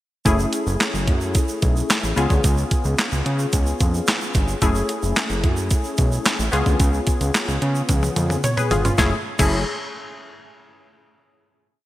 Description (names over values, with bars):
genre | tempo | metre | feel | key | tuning
early-eighties boogie funk | 110 BPM | 4/4 | straight | F# minor | A4 = 440 Hz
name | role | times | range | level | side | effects
funky polysynth comp | accompaniment | 0.3-9.6 s | A3 to C#5 | -24 LUFS | left 2 dB | chorus
fat analog bass | bass | 0.3-9.6 s | F#1 to C#3 | -22 LUFS | equal | none
crisp 8-bit digital drum machine | drums | 0.3-9.5 s | crash cymbal, handclaps, hi-hat, kick drum, snare drum, toms | -21 LUFS | equal | none
tube shaker | percussion | 0.3-9.6 s | none | -33 LUFS | right 5 dB | none
room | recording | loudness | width
moderate lush hall reverb, RT60 2.8 s | bright 1980s-style digital production | -18 LUFS | side -15 dB against mid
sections
0.3-9.0 verse; 9.0-11.2 final chord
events
drum fill 7.9-9.0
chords
0.3 F#m7; 2.2 C#7; 4.6 F#m7; 6.5 C#7; 9.0 F#m7